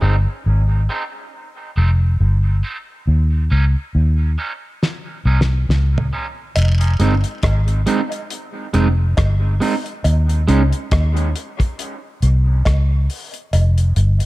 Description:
dub reggae; 69 BPM; 4/4; swing 56% on 16ths; F minor; A4 = 436 Hz
electric guitar at the edge of break-up; accompaniment; 0.0-10.6 s; Ab3 to Eb4; -24 LUFS; right 3 dB; vibrato effect, high-pass filter, dub echo
vintage muted fingered electric bass; bass; 0.0-14.2 s; F1 to Eb2; -14 LUFS; equal
damped 70s drum kit; drums; 4.8-14.3 s; hi-hat, kick drum, rim click, snare drum, toms; -22 LUFS; equal
cowbell and jawbone-type rattle; percussion; 6.6-13.8 s; -29 LUFS; right 1 dB; dub echo
small room reverb; dark, warm production; -15 LUFS; side -18 dB against mid
0.0-6.6 A section; 6.6-14.3 B section
drum fill 4.8-6.6
0.0 Fm7; 3.1 Eb7sus4; 6.6 Fm7; 10.0 Eb7(no3); 13.5 N.C.

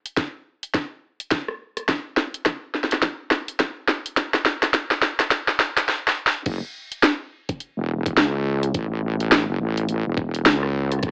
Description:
glitch hop; 105 BPM; 4/4; swing 60% on 16ths; F# minor; A4 = 438 Hz
drum and bass drum kit; drums; 0.1-11.1 s; crash cymbal, hi-hat, rim click, snare drum; -19 LUFS; equal; overdrive
electronic kick drum; drums; 0.2-11.1 s; -27 LUFS; equal; overdrive
wobble bass; bass; 6.5-11.1 s; E1 to C#2; -22 LUFS; equal; chorus, overdrive
moderate studio reverb, RT60 0.6 s; home recording on cassette, high-pass filter, AM radio sound; -20 LUFS; side -30 dB against mid
0.0-6.5 A section; 6.5-11.1 B section
build-up 0.0-6.5; drum fill 0.0-5.9, 5.9-6.5; drop 6.5-11.1

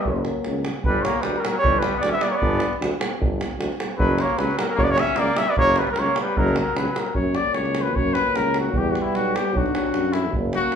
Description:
balkan folk, Balkan brass band; 152 BPM; 2/4; swing 54% on 16ths; F# phrygian dominant; A4 = 440 Hz
mellow cornet; melody; 0.0-7.2 s; A#4 to E5; -22 LUFS; right 1 dB
warm trumpet; second line; 0.0-10.8 s; F#3 to D5; -26 LUFS; left 4 dB
clear euphonium; accompaniment; 0.0-0.7, 7.2-10.8 s; F#3 to A#3; -29 LUFS; right 2 dB
warm euphonium; accompaniment; 0.0-0.7, 7.2-10.8 s; A#3 to D4; -29 LUFS; left 2 dB
warm tuba; bass; 0.1-10.6 s; F#1 to F#2; -26 LUFS; equal
davul; percussion; 0.1-10.8 s; -26 LUFS; right 1 dB
wet large studio reverb, RT60 0.8 s; band playing live in one room; -19 LUFS; side -7 dB against mid
0.9-7.2 A section; 7.2-10.8 B section
trumpet solo 7.2-10.8
0.1 F#; 0.9 G; 4.0 F#5; 7.2 F#; 8.8 Em; 9.5 Bm

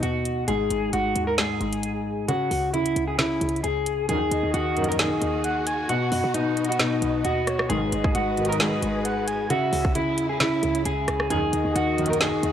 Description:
hip hop, trap; 133 BPM; 4/4; half-time; Eb phrygian; A4 = 440 Hz
electric guitar at the edge of break-up; melody; 0.0-12.5 s; D#4 to Bb4; -25 LUFS; equal; wide subtle chorus
dark concert grand piano; accompaniment; 0.0-12.5 s; Ab2 to Eb3; -28 LUFS; left 2 dB
short 808-style bass; bass; 0.0-12.5 s; Ab1 to B2; -32 LUFS; right 1 dB
trap drum kit; drums; 0.0-12.5 s; hi-hat, kick drum, rim click, snare drum; -26 LUFS; equal
warm symphonic string section; sustained chords; 4.1-12.5 s; Db3 to Cb5; -34 LUFS; equal
analog synth brass; stabs; 4.1-12.3 s; Bb1 to Eb3; -30 LUFS; right 2 dB; chorus
breathy flute-like synth lead; second line; 4.3-12.5 s; Db5 to Ab5; -31 LUFS; right 2 dB; chorus, analog delay
light reverb; dry, gritty hardware recording, cassette tape; -22 LUFS; side -9 dB against mid
0.0-4.1 A section; 4.1-12.5 B section
0.5 Ab5; 2.3 Dbm; 4.1 Ebm; 5.9 B; 7.7 Abm7; 9.5 Dbm; 11.3 Ebm

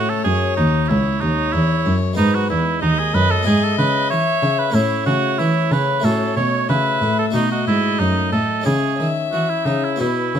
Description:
classical, baroque-style sonata movement with continuo; 93 BPM; 4/4; rubato; A4 = 438 Hz
warm violin; melody; 0.0-10.4 s; B4 to E5; -25 LUFS; left 9 dB
clear oboe; second line; 0.0-10.4 s; D#4 to C#5; -21 LUFS; right 6 dB
harpsichord; accompaniment; 0.0-10.4 s; C#2 to F#4; -23 LUFS; left 3 dB
warm cello; bass; 0.0-10.4 s; C#2 to E3; -20 LUFS; right 1 dB
light reverb; close, detailed microphones; -16 LUFS; side -8 dB against mid
0.0-10.4 A section
0.0 C#m; 2.2 G#m; 3.5 E/G#; 4.7 A; 6.0 F#m/A; 7.3 B7; 8.7 C#m

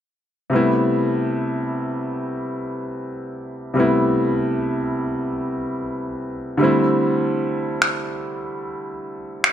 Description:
contemporary R&B; 74 BPM; 4/4; straight; A minor; A4 = 439 Hz
clear concert grand piano; accompaniment; 0.5-9.5 s; C3 to E4; -20 LUFS; equal
electronic finger snaps; drums; 7.8-9.5 s; -18 LUFS; equal; overdrive, vintage 12-bit sampler grit
moderate plate reverb, RT60 1.7 s, studio ambience; -20 LUFS; side -10 dB against mid
0.5-9.5 A section
0.5 Am9; 6.6 D7sus4

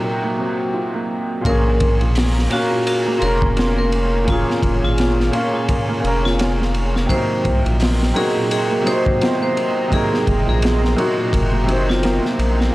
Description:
trip hop; 85 BPM; 4/4; swing 57% on 16ths; Bb minor; A4 = 440 Hz
bright upright piano; accompaniment; 0.0-12.7 s; Bb2 to F5; -22 LUFS; equal; harmonic tremolo, tape echo
felt-muted upright piano; arpeggios; 0.0-12.7 s; Bb2 to Bb4; -25 LUFS; right 2 dB; vintage 12-bit sampler grit, analog delay
round analog bass; bass; 1.4-12.7 s; F1 to C2; -19 LUFS; equal
vibraphone with hard mallets; melody; 1.5-12.2 s; F4 to C5; -23 LUFS; equal; tape echo
dark analog pad; sustained chords; 2.0-12.7 s; Ab4 to C6; -28 LUFS; equal; chorus
crunchy breakbeat drum kit; drums; 1.5-12.7 s; hi-hat, kick drum, ride cymbal, snare drum; -22 LUFS; equal
small room ambience; dry, gritty hardware recording; -16 LUFS; side -18 dB against mid
0.0-1.5 A section; 1.5-12.7 B section
break 0.0-1.5
0.0 Cm7b5; 1.5 Bbm7; 7.1 Cm7b5

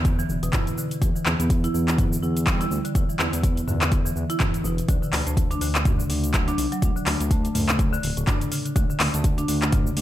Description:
afro house; 124 BPM; 4/4; swing 57% on 16ths; A4 = 441 Hz
marimba with medium hard mallets; arpeggios; 0.0-10.0 s; A2 to E4; -27 LUFS; equal; sidechain pumping, digital delay
smooth gliding synth bass; bass; 0.0-10.0 s; D1 to E2; -26 LUFS; equal; sidechain pumping
deep house drum kit; drums; 0.0-10.0 s; handclaps, hi-hat, shaker, toms; -26 LUFS; equal; overdrive
electronic kick drum; drums; 0.0-9.8 s; -22 LUFS; equal; overdrive
little or no reverb; -20 LUFS; side -13 dB against mid
0.0-10.0 A section

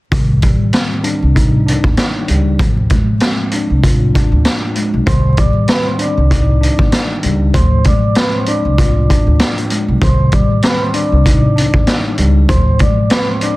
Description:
hip hop, boom-bap hip-hop; 97 BPM; 4/4; swing 56% on 16ths; C harmonic minor; A4 = 444 Hz
mellow tine electric piano; accompaniment; 0.1-13.6 s; Eb3 to F4; -19 LUFS; left 1 dB; medium stereo tremolo, cassette tape, high-pass filter, low-pass filter
upright bass; bass; 0.1-12.9 s; B1 to Eb2; -14 LUFS; equal
raw garage drum kit; drums; 0.1-13.6 s; hi-hat, kick drum, snare drum; -14 LUFS; equal; vintage 12-bit sampler grit
vibraphone with soft mallets; melody; 5.1-13.6 s; B4 to D6; -20 LUFS; equal; high-pass filter, low-pass filter
studio ambience; dense, heavily limited modern master, vinyl crackle; -11 LUFS; side -20 dB against mid
0.1-5.1 A section; 5.1-13.6 B section
0.1 Cmadd9; 2.6 Dm7b5; 5.1 Cmadd9; 7.5 Dm7b5; 10.0 Cmadd9; 12.5 Dm7b5

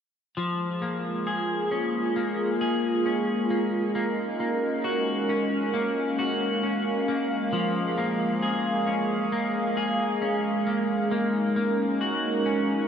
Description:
dream pop; 67 BPM; 4/4; straight; A4 = 441 Hz
hollow soft pad; sustained chords; 0.7-12.9 s; G#3 to E#5; -26 LUFS; right 1 dB; chorus
electric guitar at the edge of break-up; arpeggios; 0.4-12.9 s; E#3 to G#4; -28 LUFS; left 2 dB; wide subtle chorus, diffuse ambient delay
wet huge ambient reverb, RT60 8.2 s; dreamy mix soaked in reverb; -24 LUFS; side -8 dB against mid
0.4-12.9 A section
0.4 A#m7/E#; 4.0 D#m7; 7.5 A#m7/E#; 11.1 D#m7

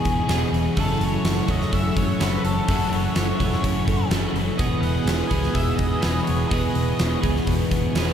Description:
rock, shoegaze and dream pop; 125 BPM; 4/4; straight; E major; A4 = 440 Hz
octave-fuzz lead guitar; melody; 0.0-7.2 s; G#4 to G#5; -30 LUFS; left 2 dB; distortion, ping-pong delay
phased analog pad; sustained chords; 0.0-8.1 s; G#4 to D#6; -32 LUFS; equal; phaser, chorus
fingerpicked twelve-string acoustic guitar; arpeggios; 0.0-8.1 s; E3 to A4; -33 LUFS; right 5 dB
thick fuzz guitar; riff; 0.0-8.1 s; E2 to F#3; -26 LUFS; left 7 dB; distortion, ensemble chorus
twelve-string electric guitar; riff; 0.0-8.1 s; E2 to G#4; -27 LUFS; right 7 dB; reverse reverb
picked electric bass; bass; 0.1-8.1 s; E1 to C#2; -26 LUFS; equal
huge arena drum kit; drums; 0.1-8.1 s; hi-hat, kick drum, snare drum; -25 LUFS; equal
wet lush hall reverb, RT60 1.8 s, small room ambience; dreamy mix soaked in reverb; -19 LUFS; side -8 dB against mid
0.0-8.1 A section
0.0 Emaj7; 0.8 F#m7; 4.6 Emaj7

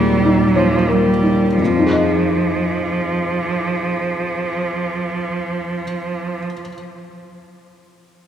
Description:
neoclassical piano and strings; 86 BPM; 3/4; rubato; F minor; A4 = 438 Hz
rich cello; second line; 0.0-6.4 s; F3 to G3; -19 LUFS; right 2 dB
felt-muted upright piano; accompaniment; 0.0-6.7 s; Eb2 to Eb5; -19 LUFS; left 2 dB
wet church reverb, RT60 3.6 s; recorded in a church or concert hall; -16 LUFS; side -9 dB against mid
0.0-1.6 A section; 1.6-5.8 B section
slowing down 0.0-1.6
0.0 Eb7; 1.6 Fm7

